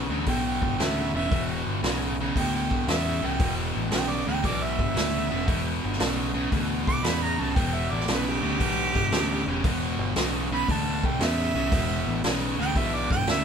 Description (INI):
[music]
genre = blues rock power trio and southern rock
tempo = 115 BPM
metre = 4/4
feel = swing 67% on 8ths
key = E minor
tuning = A4 = 440 Hz
[part]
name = overdriven electric guitar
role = riff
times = 0.0-13.4 s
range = E2 to C#3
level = -27 LUFS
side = left 1 dB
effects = none
[part]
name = growling picked electric bass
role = bass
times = 0.0-13.4 s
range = E1 to E2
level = -30 LUFS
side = equal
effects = overdrive
[part]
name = clear harmonica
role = melody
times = 0.3-13.4 s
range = G4 to D6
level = -30 LUFS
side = right 5 dB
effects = overdrive
[part]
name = vintage drum kit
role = drums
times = 0.3-13.4 s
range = hi-hat, kick drum, snare drum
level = -29 LUFS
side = equal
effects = none
[sound]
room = moderate stone room reverb, RT60 1.2 s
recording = band playing live in one room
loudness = -23 LUFS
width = side -7 dB against mid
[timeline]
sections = 0.0-13.4 A section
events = harmonica solo 0.0-13.4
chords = 0.0 Em